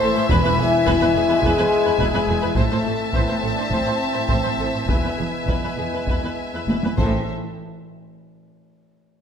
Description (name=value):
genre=cinematic, epic orchestral film score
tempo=99-106 BPM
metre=4/4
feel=straight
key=A harmonic minor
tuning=A4 = 444 Hz
part: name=rich chamber violin section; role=melody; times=0.0-7.3 s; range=E5 to A5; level=-30 LUFS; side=left 5 dB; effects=none
part: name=clear symphonic violin section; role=second line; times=0.0-7.3 s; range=C5 to E5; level=-28 LUFS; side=left 2 dB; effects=none
part: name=concert flute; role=second line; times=0.0-7.3 s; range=G#4 to C6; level=-29 LUFS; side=left 1 dB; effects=none
part: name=rich symphonic viola section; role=accompaniment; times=0.0-7.3 s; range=G#4 to C5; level=-29 LUFS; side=right 2 dB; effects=none
part: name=clear trombone section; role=sustained chords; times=0.0-7.2 s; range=E3 to C4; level=-29 LUFS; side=right 2 dB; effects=none
part: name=dark French horn section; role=sustained chords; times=0.0-7.2 s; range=G#3 to C5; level=-24 LUFS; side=left 4 dB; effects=none
part: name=rich symphonic cello section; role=bass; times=0.0-7.3 s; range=E2 to A2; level=-27 LUFS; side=right 2 dB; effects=none
part: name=rich symphonic double bass section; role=bass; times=0.0-7.3 s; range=E1 to A1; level=-28 LUFS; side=right 3 dB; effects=none
part: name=taiko ensemble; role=drums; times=0.3-8.1 s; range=none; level=-25 LUFS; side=equal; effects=none
part: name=timpani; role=percussion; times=0.3-1.1, 7.0-7.3 s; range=E2 to A2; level=-28 LUFS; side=equal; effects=none
room=wet scoring stage reverb, RT60 1.6 s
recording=none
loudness=-18 LUFS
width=side -7 dB against mid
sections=0.0-7.3 A section; 7.3-9.2 B section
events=drum fill 6.7-7.3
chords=0.3 E; 2.6 Am; 4.9 E; 7.0 Am; 7.3 N.C.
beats=| 0.30 0.86 1.43 2.00 | 2.56 3.13 3.71 4.29 | 4.88 5.47 6.07 6.67 | 7.28 7.88